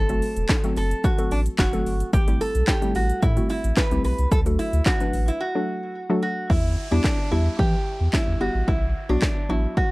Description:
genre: dance-pop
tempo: 110 BPM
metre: 4/4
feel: straight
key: E minor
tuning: A4 = 440 Hz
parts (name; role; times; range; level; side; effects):
- metal-body resonator slide guitar; melody; 0.0-9.9 s; D4 to B4; -27 LUFS; right 1 dB; none
- saturated sub bass; bass; 0.0-9.7 s; E1 to E3; -23 LUFS; equal; sidechain pumping
- hollow square pluck; accompaniment; 0.1-9.9 s; F#3 to B4; -27 LUFS; left 1 dB; chorus, sidechain pumping
- house drum kit; drums; 0.1-9.9 s; handclaps, hi-hat, kick drum, shaker, snare drum; -22 LUFS; equal; overdrive
- group handclap; percussion; 0.5-5.0 s; none; -36 LUFS; left 2 dB; none
- downlifter; sound effects; 6.5-9.9 s; none; -40 LUFS; right 2 dB; none
room: little or no reverb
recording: cassette tape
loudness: -20 LUFS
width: side -22 dB against mid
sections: 0.0-6.5 A section; 6.5-9.9 B section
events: break 5.4-6.5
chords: 0.0 F#dim; 2.1 Am7; 4.3 D; 6.5 Em; 8.7 Bm

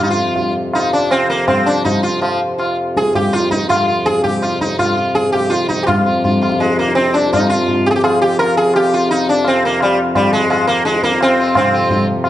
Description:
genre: indian classical, Hindustani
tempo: 160-174 BPM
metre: 4/4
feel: straight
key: F raga kafi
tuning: A4 = 440 Hz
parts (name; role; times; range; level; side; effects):
- sitar; melody; 0.0-12.3 s; F3 to Bb4; -15 LUFS; right 1 dB; none
- pedal harmonium; drone; 0.0-12.3 s; F2 to C3; -20 LUFS; left 1 dB; none
- tabla; percussion; 0.4-12.3 s; none; -18 LUFS; left 1 dB; none
room: moderate recital hall reverb, RT60 1.2 s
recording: nothing above 10.9 kHz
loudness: -12 LUFS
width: side -13 dB against mid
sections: 0.0-5.9 A section; 5.9-12.3 B section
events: speeding up 0.0-12.3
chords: none

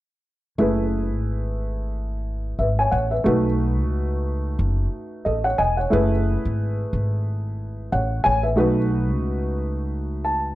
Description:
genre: hip hop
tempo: 90 BPM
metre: 4/4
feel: swing 58% on 16ths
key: F# minor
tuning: A4 = 440 Hz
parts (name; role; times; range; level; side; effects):
- dark upright piano; accompaniment; 0.6-10.6 s; A3 to A5; -23 LUFS; equal; none
- upright bass; bass; 0.6-10.5 s; E1 to C#2; -23 LUFS; equal; none
room: moderate echo chamber reverb, RT60 1.4 s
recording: dark, warm production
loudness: -20 LUFS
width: side -16 dB against mid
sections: 0.6-5.9 A section; 5.9-10.6 B section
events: upright piano fill 9.9-10.6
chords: 0.6 F#m11; 3.3 B7; 5.9 F#m11; 8.6 B7

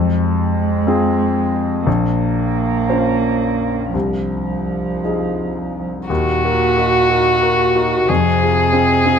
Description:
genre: neoclassical piano and strings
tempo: 55-62 BPM (dotted quarters)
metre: 6/8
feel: rubato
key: Eb dorian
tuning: A4 = 441 Hz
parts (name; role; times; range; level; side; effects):
- muted cello; second line; 0.0-9.2 s; Bb2 to Bb3; -21 LUFS; right 8 dB; none
- warm concert grand piano; accompaniment; 0.0-9.2 s; Bb1 to C5; -17 LUFS; left 2 dB; none
- muted violin; melody; 6.1-9.2 s; Gb4 to Ab4; -15 LUFS; left 1 dB; analog delay
room: moderate plate reverb, RT60 2.8 s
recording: none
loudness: -14 LUFS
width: side -7 dB against mid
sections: 0.0-6.1 A section; 6.1-9.2 B section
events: none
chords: 0.0 Fm; 1.9 Bbmadd9; 3.9 Ab6/C; 6.1 Ebm; 8.1 Fm

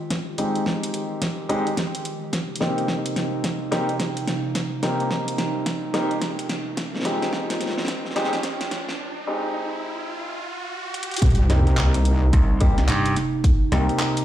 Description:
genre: glitch hop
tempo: 108 BPM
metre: 4/4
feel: swing 62% on 16ths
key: C minor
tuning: A4 = 440 Hz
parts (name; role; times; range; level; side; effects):
- warbly tape-like pad; sustained chords; 0.0-14.2 s; C3 to G4; -30 LUFS; right 2 dB; chorus, built-in reverb, sidechain pumping
- electronic kick drum; drums; 0.1-13.6 s; none; -20 LUFS; equal; high-pass filter on kick, studio reverb
- pop drum kit; drums; 0.1-14.2 s; handclaps, hi-hat, snare drum; -28 LUFS; equal; studio reverb
- dark concert grand piano; stabs; 0.4-14.2 s; Ab3 to G4; -26 LUFS; left 1 dB; sidechain pumping, digital delay
- riser and sub drop; sound effects; 4.5-13.4 s; none; -30 LUFS; equal; none
- wobble bass; bass; 11.2-12.9 s; C2; -19 LUFS; equal; chorus, overdrive
- gritty slap bass; bass; 12.3-13.9 s; C2 to G2; -22 LUFS; equal; overdrive
room: moderate plate reverb, RT60 1.9 s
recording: played on a big sound system in a bare room, stone room reverb, high-pass filter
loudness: -21 LUFS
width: side -12 dB against mid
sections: 0.0-11.2 A section; 11.2-14.2 B section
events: build-up 0.0-11.2; drum fill 0.0-9.0, 10.9; filter sweep 0.0-11.2; riser 4.5-11.2; break 9.0-11.2; drop 11.2-14.2; impact 11.2-13.4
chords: 0.0 Fm7 (rootless); 2.3 Cm7; 6.8 Fm7; 11.2 Cm7

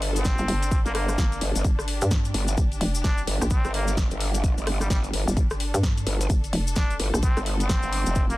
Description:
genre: bass house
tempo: 129 BPM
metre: 4/4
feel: swing 61% on 16ths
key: G minor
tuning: A4 = 440 Hz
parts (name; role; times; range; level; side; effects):
- growl bass; bass; 0.0-8.4 s; F1 to G1; -25 LUFS; equal; chorus, overdrive, sidechain pumping
- house drum kit; drums; 0.0-8.4 s; hi-hat, rim click, snare drum; -31 LUFS; left 1 dB; none
- clear symphonic string section; texture; 0.0-8.4 s; D4 to A4; -36 LUFS; left 2 dB; sidechain pumping
- trumpet with straight mute; melody; 0.2-8.4 s; G3 to D4; -32 LUFS; equal; ping-pong delay
- electronic kick drum; drums; 0.2-8.3 s; none; -24 LUFS; equal; none
- cabasa; percussion; 0.2-8.4 s; none; -36 LUFS; left 4 dB; none
- hollow knocking FM bass; bass; 0.4-7.3 s; F1 to G2; -26 LUFS; equal; overdrive, sidechain pumping
room: small room ambience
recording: dense, heavily limited modern master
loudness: -22 LUFS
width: side -18 dB against mid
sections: 0.0-8.4 A section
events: none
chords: 0.0 G5

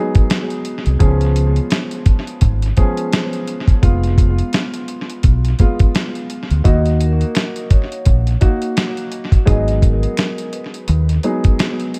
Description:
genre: hip hop, boom-bap hip-hop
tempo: 85 BPM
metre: 4/4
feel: swing 59% on 16ths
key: unclear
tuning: A4 = 440 Hz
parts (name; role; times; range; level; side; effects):
- dark upright piano; accompaniment; 0.0-12.0 s; F3 to Ab4; -25 LUFS; equal; cassette tape, high-pass filter, low-pass filter, tape echo
- dusty soul sampler-style drum kit; drums; 0.1-12.0 s; hi-hat, kick drum, snare drum; -17 LUFS; equal; none
- deep dub fingered electric bass; bass; 0.9-11.2 s; F1 to Eb2; -18 LUFS; equal; none
- vibraphone with soft mallets; melody; 6.6-11.1 s; Bb4 to Eb5; -30 LUFS; equal; high-pass filter, low-pass filter, tape echo
- finger snap; percussion; 7.3-11.8 s; none; barely audible; none; none
room: small room ambience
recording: echo-heavy mix, cassette tape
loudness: -16 LUFS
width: mono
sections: 0.0-12.0 A section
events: none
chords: 0.0 Abm7; 1.0 Db7; 3.8 Fdim; 6.7 Ebm; 9.5 Abm7

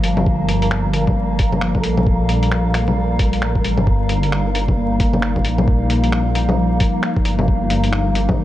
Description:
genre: future garage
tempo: 133 BPM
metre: 4/4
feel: swing 60% on 16ths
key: unclear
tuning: A4 = 440 Hz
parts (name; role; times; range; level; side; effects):
- mellow tine electric piano; accompaniment; 0.0-8.4 s; Eb3 to A4; -24 LUFS; right 1 dB; sidechain pumping, analog delay
- warbly tape-like pad; sustained chords; 0.0-8.4 s; G3 to A5; -23 LUFS; left 2 dB; chorus, built-in reverb, sidechain pumping
- dark detuned saw bass; bass; 0.0-8.4 s; G1 to Bb1; -20 LUFS; equal; sidechain pumping
- lo-fi sampler-style drum kit; drums; 0.0-8.4 s; bongos, finger snaps, hi-hat; -23 LUFS; left 1 dB; none
- wind-like tuned noise texture; texture; 0.0-8.4 s; Bb4; -28 LUFS; right 2 dB; built-in reverb
- electronic kick drum; drums; 0.3-8.4 s; none; -18 LUFS; equal; none
room: light reverb, digital ambience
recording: vinyl crackle, nothing above 10.4 kHz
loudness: -15 LUFS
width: side -14 dB against mid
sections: 0.0-8.4 A section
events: none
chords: 0.0 Gm9; 3.9 Ebadd9/G

